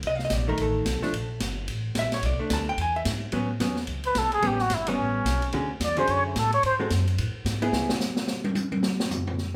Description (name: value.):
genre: jazz, small-group swing and bop.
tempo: 218 BPM.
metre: 4/4.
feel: swing 60% on 8ths.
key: A major.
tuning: A4 = 441 Hz.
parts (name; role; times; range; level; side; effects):
upright bass; bass; 0.0-7.9 s; G1 to A2; -32 LUFS; equal; none.
open jazz drum kit; drums; 0.0-9.5 s; hi-hat, ride cymbal, snare drum, toms; -32 LUFS; equal; none.
vintage hollow-body jazz guitar; accompaniment; 0.1-7.9 s; D3 to A5; -31 LUFS; equal; none.
trumpet with plunger mute; melody; 4.1-6.8 s; C#4 to D5; -27 LUFS; equal; none.
room: moderate large studio reverb, RT60 0.9 s.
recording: band playing live in one room.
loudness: -26 LUFS.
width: mono.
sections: 0.0-3.3 A section; 3.3-9.6 A section.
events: muted trumpet solo 3.3-9.6; drum solo 7.7-9.6.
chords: 0.0 Cm7; 0.6 F7; 1.1 Gm69; 2.2 Bm7; 2.8 E; 3.3 A69; 4.4 A9; 5.5 Dmaj9#11; 6.6 G#7(no3); 7.7 C#m7; 8.8 N.C..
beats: | 0.03 0.31 0.58 0.86 | 1.13 1.41 1.68 1.96 | 2.23 2.51 2.78 3.06 | 3.33 3.61 3.88 4.16 | 4.43 4.71 4.98 5.26 | 5.53 5.81 6.08 6.36 | 6.63 6.91 7.18 7.46 | 7.73 8.01 8.28 8.56 | 8.83 9.11 9.38.